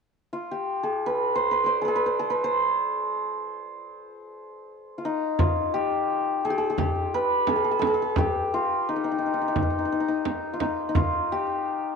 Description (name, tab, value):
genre	Persian modal ensemble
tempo	86 BPM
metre	4/4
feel	straight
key	unclear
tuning	A4 = 440 Hz
part	santur	melody	0.3-12.0 s	Eb4 to D5	-24 LUFS	equal	none
part	frame drum	percussion	5.4-11.1 s	none	-27 LUFS	right 5 dB	none
part	tombak	percussion	5.4-11.6 s	none	-32 LUFS	left 3 dB	none
room	wet spring reverb, RT60 2.4 s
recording	1960s-style stereo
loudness	-23 LUFS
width	side -5 dB against mid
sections	0.0-5.4 A section; 5.4-12.0 B section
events	none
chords	none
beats	0.53 1.23 1.92 | 2.62 3.31 4.00 4.70 | 5.39 6.09 6.78 7.48 | 8.17 8.87 9.56 10.26 | 10.95 11.64